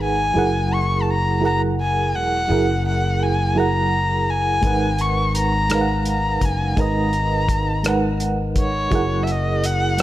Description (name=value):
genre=slow six-eight R&B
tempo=56 BPM (dotted quarters)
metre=6/8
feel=straight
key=unclear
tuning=A4 = 440 Hz
part: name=warm erhu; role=melody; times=0.0-10.0 s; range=C#5 to C#6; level=-22 LUFS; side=left 1 dB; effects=slapback echo
part: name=FM electric piano with tremolo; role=accompaniment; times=0.0-10.0 s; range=F#3 to F#5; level=-22 LUFS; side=right 3 dB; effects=none
part: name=fingered electric bass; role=bass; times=0.0-10.0 s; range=E1 to G#1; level=-22 LUFS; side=left 1 dB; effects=none
part: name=cloth-damped thuddy drum kit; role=drums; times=4.6-10.0 s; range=hi-hat, kick drum, rim click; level=-23 LUFS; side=equal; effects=none
room=light reverb, small room ambience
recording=none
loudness=-17 LUFS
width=side -14 dB against mid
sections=0.0-10.0 A section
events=none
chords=0.3 F#9; 4.6 G#m9; 8.9 F#9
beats=| 0.35 1.42 | 2.49 3.56 | 4.63 5.71 | 6.78 7.85 | 8.92 9.99